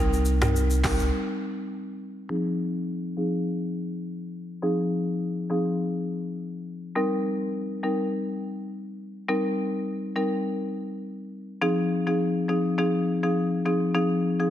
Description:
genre	afrobeats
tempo	103 BPM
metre	4/4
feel	swing 55% on 16ths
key	unclear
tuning	A4 = 441 Hz
part	marimba with medium mallets	accompaniment	0.0-14.5 s	F3 to Bb4	-25 LUFS	left 1 dB	low-pass filter
part	warm sub bass	bass	0.0-1.1 s	C2	-24 LUFS	right 1 dB	none
part	afro-pop drum kit	drums	0.1-1.1 s	finger snaps, handclaps, hi-hat, kick drum, rim click, shaker, toms	-27 LUFS	equal	none
room	light reverb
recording	heavily compressed radio sound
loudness	-24 LUFS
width	side -11 dB against mid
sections	0.0-2.3 A section; 2.3-11.6 B section; 11.6-14.5 A section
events	break 1.1-2.3; filter sweep on marimba 2.3-11.6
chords	0.0 Cm7; 2.3 Fm7; 7.0 Cm7; 11.6 Fm7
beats	0.55 1.13 1.72 | 2.30 2.88 3.46 4.04 | 4.63 5.21 5.79 6.38 | 6.96 7.54 8.12 8.71 | 9.29 9.87 10.45 11.04 | 11.62 12.20 12.78 13.37 | 13.95

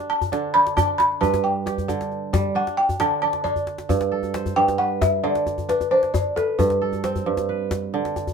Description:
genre	west african traditional, West African string and xylophone music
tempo	89 BPM (dotted quarters)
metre	12/8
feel	straight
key	G major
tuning	A4 = 439 Hz
part	kora	arpeggios	0.0-8.3 s	G2 to C5	-24 LUFS	right 6 dB	none
part	balafon	melody	0.1-7.9 s	A4 to B5	-20 LUFS	left 1 dB	none
part	djembe	percussion	0.2-8.3 s	none	-26 LUFS	left 3 dB	none
room	moderate small room reverb, RT60 0.6 s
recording	minimal, uncompressed stereo recording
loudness	-19 LUFS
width	side -6 dB against mid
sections	0.0-3.9 A section; 3.9-8.3 B section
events	balafon solo 0.0-3.9; drum fill 3.5-3.9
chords	0.0 N.C.; 1.2 G; 2.6 N.C.; 3.9 G; 5.2 Bm7/D; 6.6 G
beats	0.54 | 1.21 1.88 2.56 3.23 | 3.90 4.57 5.24 5.92 | 6.59 7.26 7.94

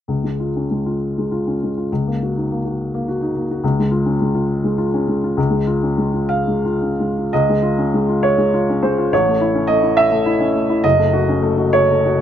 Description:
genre	classical, romantic character piece for solo piano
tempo	58-71 BPM (dotted quarters)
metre	6/8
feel	rubato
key	Db major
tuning	A4 = 441 Hz
part	warm baby grand piano	solo	0.1-12.2 s	Gb1 to F5	-15 LUFS	equal	none
room	light reverb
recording	close, detailed microphones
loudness	-15 LUFS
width	side -10 dB against mid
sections	0.1-7.3 A section; 7.3-12.2 B section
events	none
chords	0.1 Db; 1.9 Ebm7/Db; 3.6 Db; 9.1 A; 10.8 Gbm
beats	| 0.09 1.01 | 1.90 2.77 | 3.63 4.49 | 5.37 6.31 | 7.31 8.22 | 9.12 9.98 | 10.84 11.73

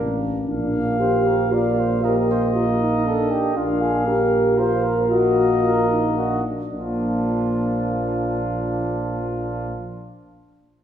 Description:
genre	classical, brass quintet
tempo	107-119 BPM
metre	3/4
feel	straight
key	Bb major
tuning	A4 = 440 Hz
part	warm flugelhorn	second line	0.0-9.7 s	D4 to D5	-25 LUFS	right 3 dB	none
part	clear trombone	accompaniment	0.0-9.7 s	F3 to Bb3	-27 LUFS	right 2 dB	none
part	mellow French horn	accompaniment	0.0-9.8 s	Bb3 to G4	-23 LUFS	left 2 dB	none
part	dark bass trombone	bass	0.0-9.7 s	A1 to Bb1	-25 LUFS	right 1 dB	none
part	clear trumpet	melody	0.5-9.7 s	F4 to F5	-29 LUFS	left 3 dB	none
room	wet recital hall reverb, RT60 1.7 s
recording	recorded in a church or concert hall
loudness	-18 LUFS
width	side -9 dB against mid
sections	0.5-6.7 A section; 6.7-10.0 B section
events	slowing down 2.8-6.7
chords	0.5 Bb; 2.0 Eb/Bb; 3.6 Bb; 5.1 Ebm/Bb; 6.7 Bb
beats	| 0.48 1.00 1.52 | 2.04 2.55 3.06 | 3.56 4.07 4.58 | 5.10 5.63 6.17 | 6.72 7.26 7.81 | 8.36 8.91 9.46

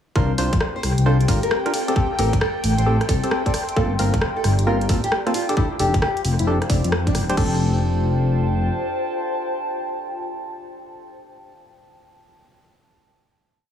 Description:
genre	UK garage, two-step garage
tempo	133 BPM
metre	4/4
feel	swing 65% on 16ths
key	F major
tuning	A4 = 439 Hz
part	nylon-string guitar	melody	0.2-11.5 s	C4 to D5	-27 LUFS	equal	tape echo
part	airy breathy pad	sustained chords	0.5-7.4 s	G5	-32 LUFS	equal	chorus, sidechain pumping
part	percussive organ stab	stabs	0.2-11.5 s	Bb3 to C5	-26 LUFS	equal	chorus, dub echo
part	dark detuned saw bass	bass	0.2-8.7 s	D1 to F2	-20 LUFS	left 1 dB	none
part	electronic kick drum	drums	0.2-7.5 s	none	-21 LUFS	equal	studio reverb
part	warbly tape-like pad	texture	0.7-11.7 s	C4 to C6	-30 LUFS	left 1 dB	chorus, built-in reverb, phaser, sidechain pumping
part	garage drum kit	drums	0.4-7.5 s	crash cymbal, hi-hat, rim click	-27 LUFS	equal	studio reverb, dub echo
room	light reverb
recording	echo-heavy mix, studio ambience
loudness	-18 LUFS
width	side -9 dB against mid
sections	0.2-7.4 groove; 7.4-11.0 final chord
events	none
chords	0.2 C9sus4; 1.7 Am7; 3.5 Gm11; 5.3 F69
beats	| 0.16 0.61 1.06 1.51 | 1.96 2.41 2.86 3.31 | 3.77 4.22 4.67 5.12 | 5.57 6.02 6.47 6.92 | 7.37 7.83 8.28 8.73 | 9.18 9.63 10.08 10.53

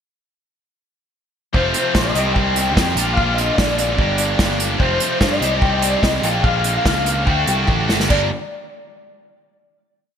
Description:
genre	indie rock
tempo	146 BPM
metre	4/4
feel	straight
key	G minor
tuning	A4 = 440 Hz
part	electric guitar through a small old amp	melody	1.5-8.3 s	C5 to G5	-22 LUFS	left 2 dB	ensemble chorus
part	high-gain distorted guitar	riff	1.5-8.3 s	F2 to Bb4	-20 LUFS	equal	distortion
part	fuzz picked electric bass	bass	1.5-8.3 s	F1 to G2	-22 LUFS	equal	overdrive
part	unplugged drum kit	drums	1.5-8.2 s	crash cymbal, hi-hat, kick drum, snare drum, toms	-20 LUFS	equal	none
room	moderate lush hall reverb, RT60 1.8 s, studio reverb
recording	bright 1980s-style digital production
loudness	-15 LUFS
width	side -8 dB against mid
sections	1.5-8.1 pre-chorus; 8.1-9.8 final chord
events	drum fill 7.7-8.1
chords	1.5 F; 2.2 Cm; 3.0 Bb; 4.0 Gm; 4.8 Fadd9; 5.4 Cm; 6.2 Bb; 7.3 D7sus4; 8.1 Gm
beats	| 1.54 1.95 2.36 2.77 | 3.18 3.58 3.99 4.40 | 4.81 5.22 5.63 6.04 | 6.45 6.86 7.27 7.69 | 8.10

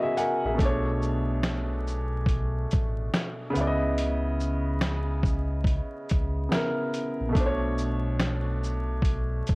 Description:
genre	lo-fi hip hop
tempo	71 BPM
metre	4/4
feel	swing 62% on 16ths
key	B dorian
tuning	A4 = 441 Hz
part	clear upright piano	accompaniment	0.0-9.6 s	B2 to G#5	-28 LUFS	equal	low-pass filter
part	dusty soul sampler-style drum kit	drums	0.2-9.6 s	finger snaps, hi-hat, kick drum, shaker, snare drum	-27 LUFS	equal	vintage 12-bit sampler grit
part	sub bass with octave	bass	0.4-9.6 s	A1 to C#2	-28 LUFS	equal	none
room	light reverb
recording	worn, warbling old tape, cassette tape, vinyl crackle, warbly pitch drift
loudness	-24 LUFS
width	side -25 dB against mid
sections	0.0-9.6 A section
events	none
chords	0.0 C#m9; 0.6 Bm9; 3.5 C#m9; 7.3 Bm9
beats	| 0.59 1.43 2.28 3.12 | 3.97 4.82 5.66 6.50 | 7.35 8.20 9.04

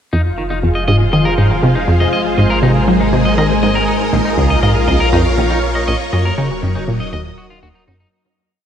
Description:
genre	ambient, sequencer-driven space music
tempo	120 BPM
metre	4/4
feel	straight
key	Eb dorian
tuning	A4 = 440 Hz
part	string machine, full ensemble	sustained chords	0.1-8.1 s	Gb3 to Eb5	-17 LUFS	equal	ensemble chorus
part	clean electric guitar	arpeggios	0.1-8.1 s	Eb3 to Eb5	-22 LUFS	left 1 dB	auto-pan, tape echo
part	plucky analog bass	riff	0.1-8.1 s	Bb1 to Gb3	-15 LUFS	equal	wide subtle chorus, tape echo
part	warm sub bass	bass	0.1-8.1 s	Eb1 to Bb1	-21 LUFS	equal	none
room	moderate plate reverb, RT60 3.0 s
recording	cassette tape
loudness	-12 LUFS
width	side -9 dB against mid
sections	0.1-8.1 A section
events	fade-out 5.5-8.1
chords	0.1 Fm; 2.1 Abadd9; 4.1 Bbm; 6.1 Ebm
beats	| 0.13 0.63 1.13 1.63 | 2.13 2.63 3.13 3.63 | 4.13 4.63 5.13 5.63 | 6.13 6.63 7.13 7.63

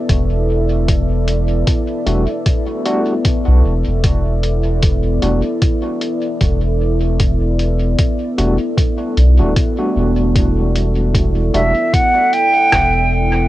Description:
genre	ambient dub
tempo	76 BPM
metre	4/4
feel	swing 57% on 16ths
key	E minor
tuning	A4 = 442 Hz
part	deep dark ambient pad	sustained chords	0.0-13.5 s	B3 to E5	-20 LUFS	equal	chorus, built-in reverb, cassette tape
part	soft dub sub bass	bass	0.1-13.5 s	D1 to B1	-15 LUFS	equal	none
part	electronic kick drum	drums	0.1-12.9 s	none	-16 LUFS	equal	cassette tape
part	lo-fi sampler-style drum kit	drums	0.1-12.9 s	hi-hat, rim click	-24 LUFS	left 1 dB	cassette tape, dub echo
part	overdriven tine electric piano	stabs	2.1-11.7 s	G3 to F#4	-22 LUFS	left 1 dB	fast tremolo, cassette tape, dub echo
part	breathy bright concert flute	melody	11.5-13.1 s	E5 to G5	-13 LUFS	right 1 dB	cassette tape, dub echo
room	light reverb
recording	home recording on cassette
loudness	-13 LUFS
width	side -15 dB against mid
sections	0.0-13.5 A section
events	none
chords	0.0 Em11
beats	0.09 | 0.88 1.67 2.46 3.25 | 4.04 4.83 5.62 6.41 | 7.20 7.99 8.78 9.57 | 10.36 11.14 11.94 12.72

